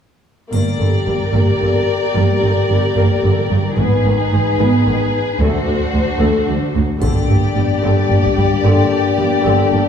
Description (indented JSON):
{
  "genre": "cinematic, epic orchestral film score",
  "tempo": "74 BPM (dotted quarters)",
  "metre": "12/8",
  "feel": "straight",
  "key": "G phrygian",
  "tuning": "A4 = 440 Hz",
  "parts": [
    { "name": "rich symphonic violin section", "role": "second line", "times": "0.5-9.9 s", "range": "F#4 to D5", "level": "-20 LUFS", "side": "left 3 dB", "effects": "none" },
    { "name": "dark symphonic viola section", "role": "accompaniment", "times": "0.5-9.8 s", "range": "D3 to G4", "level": "-20 LUFS", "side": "equal", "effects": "none" },
    { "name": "rich symphonic double bass section", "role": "bass", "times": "0.5-9.8 s", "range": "G1 to D2", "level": "-18 LUFS", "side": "right 1 dB", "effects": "none" },
    { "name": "warm symphonic cello section", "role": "bass", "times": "0.5-9.8 s", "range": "D2 to Ab2", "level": "-20 LUFS", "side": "right 2 dB", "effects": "none" },
    { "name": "triangle", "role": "percussion", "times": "0.5-1.6, 7.0-8.1 s", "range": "none", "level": "-38 LUFS", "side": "left 4 dB", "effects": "none" },
    { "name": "warm symphonic violin section", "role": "melody", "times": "7.0-9.9 s", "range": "D5", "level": "-23 LUFS", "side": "left 4 dB", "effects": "none" },
    { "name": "warm French horn section", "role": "sustained chords", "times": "7.0-9.9 s", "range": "Bb3 to D4", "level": "-19 LUFS", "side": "left 6 dB", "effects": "none" },
    { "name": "taiko ensemble", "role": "drums", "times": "7.0-8.5 s", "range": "none", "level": "-23 LUFS", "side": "left 1 dB", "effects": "none" }
  ],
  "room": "wet scoring stage reverb, RT60 1.7 s",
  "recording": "heard from further back in the room, small room ambience",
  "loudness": "-13 LUFS",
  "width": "side -8 dB against mid",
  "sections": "0.5-7.0 A section; 7.0-9.9 B section",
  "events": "build-up 7.0-9.9",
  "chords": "0.5 Gm; 3.8 Abm; 5.4 D7; 7.0 Gm",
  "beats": "| 0.53 1.34 2.15 2.96 | 3.78 4.59 5.40 6.21 | 7.03 7.84 8.65 9.46"
}